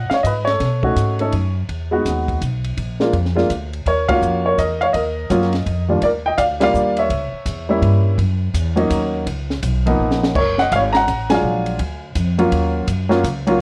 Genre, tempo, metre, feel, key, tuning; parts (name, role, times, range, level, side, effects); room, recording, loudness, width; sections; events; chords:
jazz piano trio; 166 BPM; 3/4; swing 64% on 8ths; Eb minor; A4 = 442 Hz
warm baby grand piano; melody; 0.0-13.6 s; Eb2 to Bb5; -20 LUFS; equal
upright bass; bass; 0.0-13.6 s; Gb1 to B2; -23 LUFS; equal
compact cocktail drum kit; drums; 0.1-13.5 s; crash cymbal, hi-hat, kick drum, ride cymbal, snare drum; -29 LUFS; equal
light reverb; worn, warbling old tape, cassette tape, warbly pitch drift; -18 LUFS; mono
0.0-6.0 A section; 6.0-13.6 B section
band accent 4.0, 11.3; drum fill 10.0-10.3
0.0 Abmadd9; 0.6 B9; 1.7 Emaj9; 2.8 Bb7; 3.9 Ebm9; 6.0 Ebmaj7; 7.1 Dbdim7; 8.2 Ebm7; 9.3 Db13; 10.3 Gbmaj9; 11.4 Bb7b13; 12.5 Ebm9